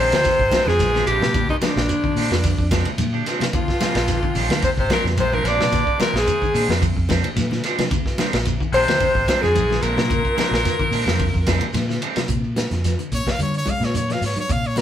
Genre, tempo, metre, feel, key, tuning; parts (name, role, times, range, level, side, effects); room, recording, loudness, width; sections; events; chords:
afrobeat; 110 BPM; 4/4; swing 54% on 16ths; Bb mixolydian; A4 = 440 Hz
edgy alto saxophone; melody; 0.0-11.7 s; D4 to D5; -21 LUFS; left 1 dB
mellow hollow bass bansuri; second line; 0.0-11.7 s; D4 to D5; -29 LUFS; right 2 dB
raspy baritone saxophone; second line; 0.0-11.7 s; D2 to D3; -27 LUFS; left 3 dB
clean electric guitar; arpeggios; 0.0-14.8 s; C3 to Ab3; -30 LUFS; left 9 dB
electric guitar at the edge of break-up; stabs; 0.0-12.2 s; Ab3 to G4; -28 LUFS; right 5 dB
fingered electric bass; bass; 0.0-14.8 s; Ab1 to D3; -23 LUFS; equal
crunchy breakbeat drum kit; drums; 0.1-14.8 s; hi-hat, kick drum, ride cymbal, snare drum; -24 LUFS; equal
shekere; percussion; 0.1-14.8 s; -30 LUFS; right 3 dB
congas; percussion; 0.2-14.8 s; -30 LUFS; right 2 dB
brilliant trumpet; melody; 13.1-14.8 s; Bb4 to F5; -25 LUFS; left 1 dB
moderate studio reverb, RT60 0.8 s; band playing live in one room; -17 LUFS; side -10 dB against mid
0.0-12.3 A section; 12.3-14.8 B section
trumpet solo 12.3-14.8
0.0 Bb13; 12.3 Bbadd9